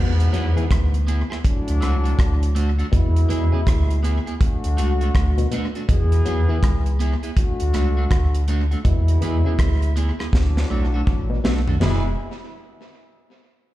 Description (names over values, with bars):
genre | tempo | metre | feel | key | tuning
roots reggae | 81 BPM | 4/4 | swing 63% on 16ths | E mixolydian | A4 = 435 Hz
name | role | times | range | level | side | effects
brilliant trombone section | second line | 0.0-12.1 s | G#2 to G#4 | -29 LUFS | left 2 dB | tape echo, slapback echo
muted clav | arpeggios | 0.0-12.0 s | B2 to F#3 | -30 LUFS | left 4 dB | slapback echo
soft dub sub bass | bass | 0.0-12.2 s | E1 to E2 | -19 LUFS | equal | none
deep reggae drum kit | drums | 0.2-12.0 s | crash cymbal, hi-hat, kick drum, rim click, snare drum, toms | -21 LUFS | equal | none
electric guitar at the edge of break-up | accompaniment | 0.3-12.1 s | A3 to G#4 | -30 LUFS | right 2 dB | wide subtle chorus, tape echo, slapback echo
room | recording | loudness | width
studio ambience | live gig heard through the venue's PA, club reverb | -18 LUFS | side -15 dB against mid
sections
0.0-11.8 A section; 11.8-13.7 B section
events
drum fill 10.3-11.8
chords
0.0 E; 1.4 D; 2.9 E; 4.4 D; 5.9 E; 7.4 D; 8.8 E; 10.3 D; 11.8 E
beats
0.70 1.44 2.18 | 2.92 3.66 4.40 5.14 | 5.88 6.62 7.37 8.11 | 8.85 9.59 10.33 11.07 | 11.81